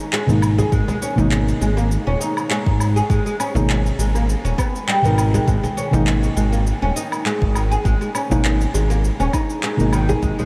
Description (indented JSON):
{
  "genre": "organic downtempo",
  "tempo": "101 BPM",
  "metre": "4/4",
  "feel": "swing 54% on 16ths",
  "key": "G# minor",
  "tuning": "A4 = 442 Hz",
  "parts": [
    { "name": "oud", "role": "arpeggios", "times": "0.0-10.5 s", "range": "D#3 to G#4", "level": "-25 LUFS", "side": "equal", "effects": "tape echo" },
    { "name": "electronic shaker, handclaps and woodblock", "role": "drums", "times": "0.0-10.5 s", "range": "none", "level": "-30 LUFS", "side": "equal", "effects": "none" },
    { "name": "deep mellow chord stab", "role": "accompaniment", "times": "0.3-10.5 s", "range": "B2 to A#4", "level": "-26 LUFS", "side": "equal", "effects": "chorus, sidechain pumping, tape echo" },
    { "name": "smooth gliding synth bass", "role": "bass", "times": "0.3-10.3 s", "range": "D#1 to G#1", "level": "-22 LUFS", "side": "equal", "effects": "none" },
    { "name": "frame drum", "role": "percussion", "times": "0.6-10.5 s", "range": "none", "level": "-33 LUFS", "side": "equal", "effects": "none" },
    { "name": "electronic kick drum", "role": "drums", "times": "0.7-10.4 s", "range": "none", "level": "-23 LUFS", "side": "equal", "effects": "none" }
  ],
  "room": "moderate huge ambient reverb, RT60 7.8 s",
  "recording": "dreamy mix soaked in reverb",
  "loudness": "-19 LUFS",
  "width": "mono",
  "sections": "0.0-10.5 A section",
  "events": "none",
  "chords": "0.0 G#madd9"
}